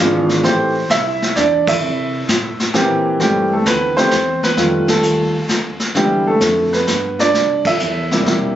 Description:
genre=jazz piano trio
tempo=130 BPM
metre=3/4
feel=swing 68% on 8ths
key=C major from 3.2 s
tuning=A4 = 440 Hz
part: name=warm grand piano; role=melody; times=0.0-8.5 s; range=C3 to F5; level=-15 LUFS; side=right 1 dB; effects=none
part: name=upright bass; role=bass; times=0.0-8.6 s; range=E1 to C3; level=-24 LUFS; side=equal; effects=none
part: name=vintage brush drum kit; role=drums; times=0.3-8.6 s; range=brushed snare drum, crash cymbal, hi-hat, kick drum, ride cymbal, snare drum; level=-20 LUFS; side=left 1 dB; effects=none
room=light reverb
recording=recorded on a phone in the room, club reverb, nothing above 7.8 kHz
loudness=-14 LUFS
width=side -11 dB against mid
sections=0.0-3.2 A section; 3.2-8.6 B section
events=band accent 1.6, 4.8, 7.6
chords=0.4 Am7; 1.8 C7; 3.2 C6; 4.6 F9; 6.0 Em7; 7.3 C7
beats=| 0.44 0.90 1.36 | 1.82 2.28 2.74 | 3.20 3.66 4.12 | 4.58 5.04 5.50 | 5.96 6.42 6.88 | 7.34 7.80 8.26

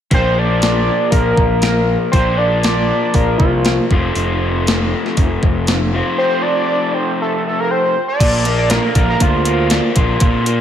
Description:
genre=indie rock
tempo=119 BPM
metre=4/4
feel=straight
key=Bb major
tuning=A4 = 441 Hz
part: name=lead with added fifth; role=melody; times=0.1-9.9 s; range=F4 to D5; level=-17 LUFS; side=right 1 dB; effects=chorus, slapback echo
part: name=raw garage guitar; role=riff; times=0.1-10.6 s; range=F2 to F4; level=-19 LUFS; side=left 2 dB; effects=overdrive, slapback echo
part: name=fuzz picked electric bass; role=bass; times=0.1-10.6 s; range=F1 to Bb2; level=-19 LUFS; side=equal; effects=overdrive
part: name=clean 12-bit digital drum machine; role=drums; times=0.1-10.6 s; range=crash cymbal, hi-hat, kick drum, snare drum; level=-17 LUFS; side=equal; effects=overdrive
room=moderate lush hall reverb, RT60 1.7 s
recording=big arena sound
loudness=-13 LUFS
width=side -9 dB against mid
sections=0.1-8.2 A section; 8.2-10.6 B section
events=none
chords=0.1 Bb; 3.9 F; 8.2 Bb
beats=| 0.11 0.62 1.12 1.63 | 2.14 2.64 3.15 3.65 | 4.16 4.67 5.17 5.68 | 6.18 6.69 7.19 7.70 | 8.20 8.71 9.21 9.72 | 10.22

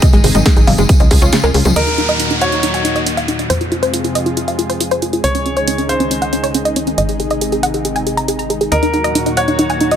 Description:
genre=uplifting trance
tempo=138 BPM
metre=4/4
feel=straight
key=Eb dorian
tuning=A4 = 440 Hz
part: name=wide unison pluck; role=melody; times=0.0-10.0 s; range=Db4 to Bb5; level=-17 LUFS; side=equal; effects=sidechain pumping, ping-pong delay
part: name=lush unison pad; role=sustained chords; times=0.0-10.0 s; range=Bb2 to Ab4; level=-21 LUFS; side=left 1 dB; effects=chorus, sidechain pumping
part: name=wide unison pluck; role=arpeggios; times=0.0-1.7 s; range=C3 to Ab4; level=-21 LUFS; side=left 3 dB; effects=sidechain pumping, ping-pong delay
part: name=electronic kick drum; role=drums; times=0.0-1.2 s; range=none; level=-10 LUFS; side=equal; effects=overdrive
part: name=punchy analog drum machine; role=drums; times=0.0-10.0 s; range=hi-hat, snare drum, toms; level=-21 LUFS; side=right 1 dB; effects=none
part: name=tambourine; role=percussion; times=0.0-1.7 s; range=none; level=-25 LUFS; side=left 2 dB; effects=none
part: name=tight sequencer bass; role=bass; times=0.1-10.0 s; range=Gb1 to F2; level=-21 LUFS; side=equal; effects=sidechain pumping
part: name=bright baby grand piano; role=second line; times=1.8-9.9 s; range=Bb4 to Db5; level=-20 LUFS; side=equal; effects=ping-pong delay
part: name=downlifter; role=sound effects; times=1.8-5.2 s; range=none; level=-21 LUFS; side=equal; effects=none
room=light reverb, digital ambience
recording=none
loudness=-12 LUFS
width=side -9 dB against mid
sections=0.0-1.8 A section; 1.8-10.0 B section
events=break 1.3-1.8; filter sweep on synth pluck 1.8-10.0; filter sweep on analog synth pad 1.8-10.0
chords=0.0 Ab; 0.9 Db; 1.8 Ebm; 3.5 Fm; 5.2 Dbsus2; 7.0 Ab; 8.7 Ebm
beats=| 0.02 0.46 0.89 1.33 | 1.76 2.20 2.63 3.07 | 3.50 3.94 4.37 4.80 | 5.24 5.67 6.11 6.54 | 6.98 7.41 7.85 8.28 | 8.72 9.15 9.59

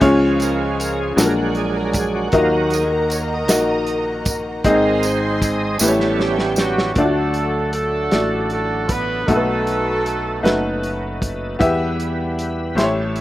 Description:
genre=slow gospel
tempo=52 BPM (dotted quarters)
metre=6/8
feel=straight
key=D major from 7.0 s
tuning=A4 = 439 Hz
part: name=bright upright piano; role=accompaniment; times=0.0-13.2 s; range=Ab2 to E5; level=-19 LUFS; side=left 2 dB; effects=none
part: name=bright tonewheel organ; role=sustained chords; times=0.0-13.2 s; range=E3 to F5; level=-24 LUFS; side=right 3 dB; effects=slow rotary speaker, overdrive, chorus vibrato
part: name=warm symphonic string section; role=sustained chords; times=0.0-6.9 s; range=Ab4 to C6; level=-28 LUFS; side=right 2 dB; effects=none
part: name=fingered electric bass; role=bass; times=0.0-13.2 s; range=F#1 to E2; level=-26 LUFS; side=equal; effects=none
part: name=warm soul drum kit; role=drums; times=0.0-13.2 s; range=hi-hat, kick drum, snare drum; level=-22 LUFS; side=equal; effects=none
part: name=tambourine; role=percussion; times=0.4-6.9 s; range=none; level=-25 LUFS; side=right 3 dB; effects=none
part: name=warm horn section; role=melody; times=6.6-10.8 s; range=Gb3 to B4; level=-22 LUFS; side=right 2 dB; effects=none
room=light reverb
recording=rough home demo mix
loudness=-16 LUFS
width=side -15 dB against mid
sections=0.0-7.0 A section; 7.0-13.2 B section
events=tonewheel organ solo 0.0-7.0; drum fill 5.8-7.0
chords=0.0 Db; 1.2 Bbaug7; 2.3 Ebm; 4.6 Ab; 5.8 A7; 7.0 D; 9.3 B7; 11.6 Em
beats=| 0.02 1.17 | 2.33 3.49 | 4.64 5.80 | 6.96 8.12 | 9.28 10.44 | 11.60 12.76

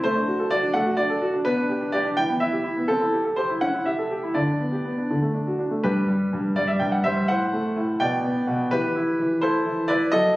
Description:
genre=classical-period piano sonatina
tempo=84 BPM (dotted quarters)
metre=6/8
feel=rubato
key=G major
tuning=A4 = 441 Hz
part: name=clear grand piano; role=solo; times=0.0-10.4 s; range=G2 to G5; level=-21 LUFS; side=equal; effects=none
room=wet recital hall reverb, RT60 1.5 s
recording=recorded on a phone in the room, club reverb, compression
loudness=-21 LUFS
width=side -18 dB against mid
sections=0.0-5.8 A section; 5.8-10.4 B section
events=none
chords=0.0 D7/A; 1.5 G/B; 2.2 Em; 2.9 Am7/C; 3.6 A7/C#; 4.4 G/D; 5.1 D; 5.8 G; 7.3 F#dim/A; 8.0 G/B; 8.7 Em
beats=| 0.04 0.75 | 1.46 2.17 | 2.88 3.62 | 4.36 5.10 | 5.84 6.57 | 7.28 8.00 | 8.71 9.42 | 10.13

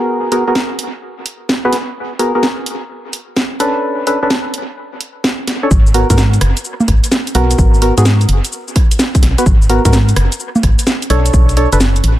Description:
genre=UK garage, two-step garage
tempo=128 BPM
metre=4/4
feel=swing 67% on 16ths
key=unclear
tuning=A4 = 440 Hz
part: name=percussive organ stab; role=stabs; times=0.0-11.8 s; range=B3 to C#5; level=-17 LUFS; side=equal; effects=chorus, analog delay
part: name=house drum kit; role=drums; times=0.3-12.2 s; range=congas, hi-hat, rim click, shaker, snare drum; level=-17 LUFS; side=right 1 dB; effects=overdrive, dub echo
part: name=organ-like FM bass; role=bass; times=5.7-12.2 s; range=F#1 to G#2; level=-12 LUFS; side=equal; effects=none
part: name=electronic kick drum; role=drums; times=5.7-11.5 s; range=none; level=-12 LUFS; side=equal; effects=overdrive
room=light reverb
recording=echo-heavy mix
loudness=-11 LUFS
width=side -14 dB against mid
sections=0.0-5.7 A section; 5.7-12.2 B section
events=drop 5.7-12.2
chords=0.0 G#m9; 3.6 Bm9; 5.7 G#m9; 11.1 Bm9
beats=| 0.09 0.55 1.02 1.49 | 1.96 2.43 2.90 3.37 | 3.83 4.30 4.77 5.24 | 5.71 6.18 6.65 7.12 | 7.58 8.05 8.52 8.99 | 9.46 9.93 10.40 10.87 | 11.34 11.80

